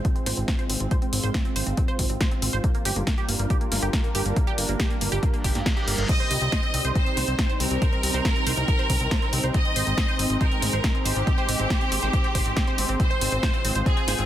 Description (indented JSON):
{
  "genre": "uplifting trance",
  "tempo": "139 BPM",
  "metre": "4/4",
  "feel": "straight",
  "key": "C minor",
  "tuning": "A4 = 439 Hz",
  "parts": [
    { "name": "lush unison pad", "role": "sustained chords", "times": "0.0-14.3 s", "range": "G3 to C5", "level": "-31 LUFS", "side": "equal", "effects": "chorus, phaser, sidechain pumping" },
    { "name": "wide unison pluck", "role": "arpeggios", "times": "0.0-14.2 s", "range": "Bb3 to C5", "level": "-32 LUFS", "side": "right 4 dB", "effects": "phaser, sidechain pumping, digital delay" },
    { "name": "electronic kick drum", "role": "drums", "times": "0.0-13.9 s", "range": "none", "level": "-24 LUFS", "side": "equal", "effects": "none" },
    { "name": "techno drum kit", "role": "drums", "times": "0.0-14.3 s", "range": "crash cymbal, hi-hat, snare drum", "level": "-28 LUFS", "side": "equal", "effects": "overdrive" },
    { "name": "fat analog bass", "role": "bass", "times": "0.3-14.3 s", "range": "G1 to G2", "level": "-27 LUFS", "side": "equal", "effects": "sidechain pumping" },
    { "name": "reverse cymbal", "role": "sound effects", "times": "5.4-6.1 s", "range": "none", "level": "-33 LUFS", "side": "left 2 dB", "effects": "none" },
    { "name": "bright studio violin section", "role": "second line", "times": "6.1-14.3 s", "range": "G4 to Eb5", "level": "-27 LUFS", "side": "equal", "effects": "digital delay" }
  ],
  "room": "light reverb, digital ambience",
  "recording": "dense, heavily limited modern master",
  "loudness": "-21 LUFS",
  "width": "side -12 dB against mid",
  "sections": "0.0-14.3 A section",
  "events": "filter sweep on analog synth pad 0.0-14.3; reverse cymbal 5.4-6.1",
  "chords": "0.0 Fm/Ab; 2.6 Gm7; 6.1 Cm; 9.5 Ab; 13.0 Fm/Ab",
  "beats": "0.05 0.48 | 0.91 1.34 1.78 2.21 | 2.64 3.07 3.50 3.93 | 4.37 4.80 5.23 5.66 | 6.09 6.52 6.96 7.39 | 7.82 8.25 8.68 9.11 | 9.54 9.98 10.41 10.84 | 11.27 11.70 12.13 12.57 | 13.00 13.43 13.86"
}